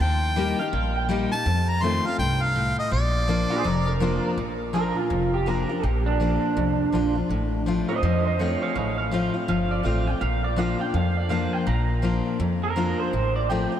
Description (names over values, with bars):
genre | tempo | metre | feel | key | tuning
honky-tonk and classic country | 165 BPM | 4/4 | swing 62% on 8ths | Bb major | A4 = 440 Hz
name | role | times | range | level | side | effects
clear harmonica | melody | 0.0-4.0 s | D5 to C6 | -28 LUFS | equal | ping-pong delay
picked steel-string acoustic guitar | accompaniment | 0.0-13.8 s | F2 to G4 | -26 LUFS | left 3 dB | none
upright bass | bass | 0.0-13.7 s | F1 to F2 | -26 LUFS | equal | none
electric guitar through a small old amp | second line | 0.6-1.2, 3.5-13.8 s | D4 to Bb5 | -27 LUFS | right 4 dB | analog chorus, diffuse ambient delay
room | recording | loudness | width
moderate huge ambient reverb, RT60 4.7 s | dreamy mix soaked in reverb | -21 LUFS | side -10 dB against mid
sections
0.0-4.4 A section; 4.4-13.8 B section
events
clean electric guitar solo 4.4-13.8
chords
0.0 Eb; 1.5 F7; 2.9 Bb; 7.3 F/A; 10.2 Bb; 13.1 F/A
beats
| 0.00 0.37 0.73 1.10 | 1.46 1.82 2.19 2.55 | 2.92 3.28 3.65 4.01 | 4.38 4.74 5.11 5.47 | 5.84 6.20 6.57 6.93 | 7.30 7.66 8.03 8.39 | 8.76 9.12 9.49 9.85 | 10.21 10.58 10.94 11.31 | 11.67 12.04 12.40 12.77 | 13.13 13.49